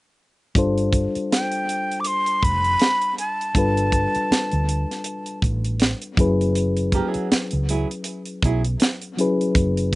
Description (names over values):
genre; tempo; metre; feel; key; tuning
R&B, neo-soul; 80 BPM; 4/4; swing 57% on 16ths; G lydian; A4 = 440 Hz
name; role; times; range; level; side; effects
mellow reed electric piano; accompaniment; 0.6-10.0 s; F#3 to C5; -24 LUFS; left 2 dB; slapback echo
woody fretless electric bass; bass; 0.6-10.0 s; F1 to D2; -23 LUFS; right 1 dB; none
tight funk drum kit; drums; 0.6-10.0 s; hi-hat, kick drum, snare drum; -21 LUFS; right 1 dB; none
breathy concert flute; melody; 1.3-5.4 s; G5 to D6; -22 LUFS; equal; slapback echo
flamenco guitar; second line; 6.9-8.6 s; F#3 to G#4; -26 LUFS; right 5 dB; none
room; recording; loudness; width
little or no reverb; recorded outdoors, with no room sound, nothing above 10.8 kHz; -19 LUFS; side -20 dB against mid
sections
0.6-10.0 A section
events
none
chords
0.6 G9sus4; 6.2 F#9sus4